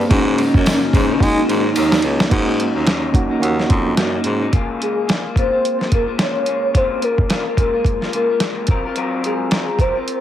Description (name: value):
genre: indie pop, bedroom pop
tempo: 108 BPM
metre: 4/4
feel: swing 60% on 16ths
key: unclear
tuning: A4 = 440 Hz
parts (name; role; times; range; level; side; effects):
- electric guitar through a small old amp; accompaniment; 0.0-10.2 s; Ab2 to Bb4; -24 LUFS; left 4 dB; lush chorus, warbly pitch drift
- reed electric piano; accompaniment; 0.0-4.6 s; Bb3 to C5; -21 LUFS; right 4 dB; fast tremolo, cassette tape
- breathy baritone saxophone; bass; 0.0-4.5 s; Db2 to Ab3; -20 LUFS; equal; none
- tambourine; percussion; 0.0-2.3 s; none; -36 LUFS; right 2 dB; none
- soft octave-layered synth lead; melody; 0.1-10.2 s; Db4 to Db5; -20 LUFS; left 1 dB; tremolo, ensemble chorus, analog delay
- dusty soul sampler-style drum kit; drums; 0.1-10.2 s; crash cymbal, hi-hat, kick drum, ride cymbal, snare drum; -18 LUFS; equal; none
room: moderate studio reverb, RT60 0.6 s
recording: heavily compressed radio sound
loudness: -15 LUFS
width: side -11 dB against mid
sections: 0.0-2.3 A section; 2.3-4.5 B section; 4.5-10.2 C section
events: drum fill 1.2-2.3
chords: 0.1 Ab7sus4; 4.5 Db6; 8.7 Gbmaj9#11